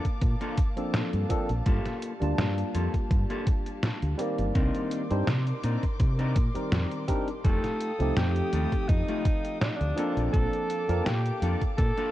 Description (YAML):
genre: vaporwave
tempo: 83 BPM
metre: 4/4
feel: swing 54% on 16ths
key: unclear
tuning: A4 = 440 Hz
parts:
  - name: dark studio string section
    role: sustained chords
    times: 0.0-12.1 s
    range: Bb3 to Eb6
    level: -41 LUFS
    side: left 2 dB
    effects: vintage 12-bit sampler grit
  - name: clean electric guitar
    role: riff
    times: 0.0-12.1 s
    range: A3 to Bb4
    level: -36 LUFS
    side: left 2 dB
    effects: wide subtle chorus, tape echo
  - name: detuned 8-bit digital drum machine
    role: drums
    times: 0.0-12.1 s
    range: hi-hat, snare drum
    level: -31 LUFS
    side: equal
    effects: none
  - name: electronic kick drum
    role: drums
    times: 0.0-11.9 s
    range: none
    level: -26 LUFS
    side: equal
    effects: none
  - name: fingered electric bass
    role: bass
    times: 0.2-11.9 s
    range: F1 to C3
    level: -28 LUFS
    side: equal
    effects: none
  - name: barky tine electric piano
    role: accompaniment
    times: 0.8-11.1 s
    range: Eb3 to A5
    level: -33 LUFS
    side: equal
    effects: overdrive, wide subtle chorus, vintage 12-bit sampler grit, tape echo
  - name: clear alto saxophone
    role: melody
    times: 7.4-12.1 s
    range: D4 to A4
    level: -32 LUFS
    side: right 1 dB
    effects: tape echo
room: light reverb, digital ambience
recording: dark, warm production, cassette tape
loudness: -25 LUFS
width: side -14 dB against mid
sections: 0.0-12.1 A section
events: none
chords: 0.0 Bbmaj7; 1.7 Gm9; 4.6 Cm9; 7.4 F9; 10.0 Bbmaj7